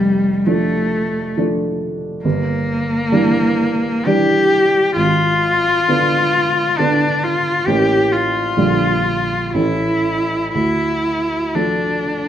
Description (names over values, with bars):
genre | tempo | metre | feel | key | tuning
classical, romantic duo for cello and grand piano | 65 BPM | 3/4 | uneven beats, rubato | D minor | A4 = 440 Hz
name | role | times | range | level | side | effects
warm cello | melody | 0.0-12.3 s | G3 to G4 | -16 LUFS | left 2 dB | none
warm baby grand piano | accompaniment | 0.0-12.3 s | F1 to D4 | -19 LUFS | right 2 dB | none
room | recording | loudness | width
wet recital hall reverb, RT60 1.4 s | minimal, uncompressed stereo recording | -14 LUFS | side -10 dB against mid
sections
0.0-12.3 A section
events
none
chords
0.0 Dm/F; 2.2 Em7b5/G; 5.0 G#dim7; 7.7 A7b9; 8.6 Bb6; 9.5 A; 10.5 Dm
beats
0.45 1.37 | 2.24 3.11 4.06 | 4.97 5.88 6.79 | 7.67 8.57 9.54 | 10.53 11.54